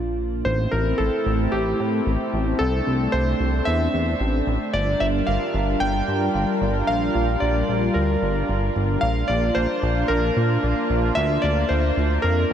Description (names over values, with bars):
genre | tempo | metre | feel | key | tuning
synthwave | 112 BPM | 4/4 | straight | A phrygian | A4 = 436 Hz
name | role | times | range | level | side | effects
warm analog pad | sustained chords | 0.0-12.5 s | G3 to Bb4 | -24 LUFS | equal | chorus
chorused synth bass | bass | 0.0-12.5 s | G1 to Bb2 | -23 LUFS | equal | tube saturation
warm electric grand piano | melody | 0.5-12.5 s | G4 to G5 | -24 LUFS | equal | diffuse ambient delay
room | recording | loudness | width
moderate huge ambient reverb, RT60 8.4 s | dreamy mix soaked in reverb | -19 LUFS | side -9 dB against mid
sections
0.5-12.5 A section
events
none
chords
0.5 Am; 4.7 Gm7; 9.0 Bb